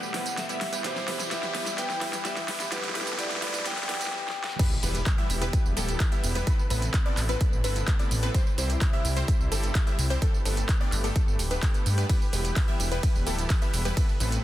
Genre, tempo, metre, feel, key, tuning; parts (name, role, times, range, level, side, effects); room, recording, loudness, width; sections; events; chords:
EDM, festival progressive house; 128 BPM; 4/4; straight; A4 = 443 Hz
vibraphone with hard mallets; melody; 0.0-4.1 s; B4 to G5; -34 LUFS; left 1 dB; digital delay
warm baby grand piano; accompaniment; 0.0-4.6 s; B2 to G4; -38 LUFS; right 1 dB; sidechain pumping
lush unison pad; sustained chords; 0.0-14.4 s; B2 to B4; -38 LUFS; equal; chorus, sidechain pumping
supersaw stab; riff; 0.0-14.4 s; G3 to E5; -34 LUFS; equal; sidechain pumping, digital delay
big-room dance drum kit; drums; 0.0-14.4 s; crash cymbal, handclaps, hi-hat, ride cymbal, snare drum, tambourine; -32 LUFS; right 1 dB; overdrive, small room reverb
riser and impact; sound effects; 0.0-6.5 s; -37 LUFS; equal
wide unison pluck; arpeggios; 4.6-14.4 s; A4 to E5; -37 LUFS; left 1 dB; wide subtle chorus, sidechain pumping, digital delay
electronic kick drum; drums; 4.6-14.1 s; -24 LUFS; equal; overdrive, small room reverb
detuned saw bass; bass; 4.8-14.4 s; D1 to G2; -27 LUFS; equal; sidechain pumping
light reverb, digital ambience; dense, heavily limited modern master, high-pass filter; -24 LUFS; side -14 dB against mid
0.0-4.6 A section; 4.6-14.4 B section
build-up 0.0-4.6; drum fill 0.0-4.1, 4.1-4.6; riser 0.0-4.1; stop 4.1-4.6; drop 4.6-14.4; impact 4.6-6.5
0.0 Asus2; 0.8 C; 2.7 Gadd9; 4.6 Em; 6.5 Amadd9; 8.3 C; 10.2 Gadd9; 12.1 Em